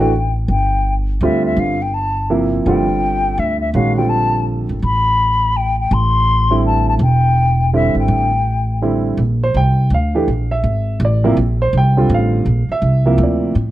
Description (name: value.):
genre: modal jazz.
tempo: 165 BPM.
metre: 3/4.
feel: swing 63% on 8ths.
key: G dorian.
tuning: A4 = 441 Hz.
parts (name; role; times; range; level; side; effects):
mellow silver concert flute; melody; 0.0-8.8 s; E5 to C6; -18 LUFS; left 3 dB; none.
warm upright piano; accompaniment; 0.0-13.6 s; C3 to G5; -18 LUFS; right 2 dB; none.
upright bass; bass; 0.0-13.7 s; E1 to A2; -16 LUFS; equal; none.
room: light reverb.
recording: none.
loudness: -13 LUFS.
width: side -14 dB against mid.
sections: 0.0-9.2 A section; 9.2-13.7 B section.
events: none.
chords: 0.5 Gm11; 4.8 Am11; 9.2 Gm11.